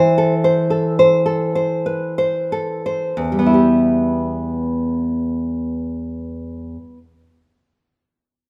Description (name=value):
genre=romantic piece for solo classical guitar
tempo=43-62 BPM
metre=3/4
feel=rubato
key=E minor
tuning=A4 = 439 Hz
part: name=nylon-string guitar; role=solo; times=0.0-7.1 s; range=E2 to C5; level=-18 LUFS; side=equal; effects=none
room=moderate recital hall reverb, RT60 1.3 s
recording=none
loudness=-18 LUFS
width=mono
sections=0.0-3.2 A section; 3.2-6.9 B section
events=slowing down 0.0-3.2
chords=0.0 Am/E; 3.2 Em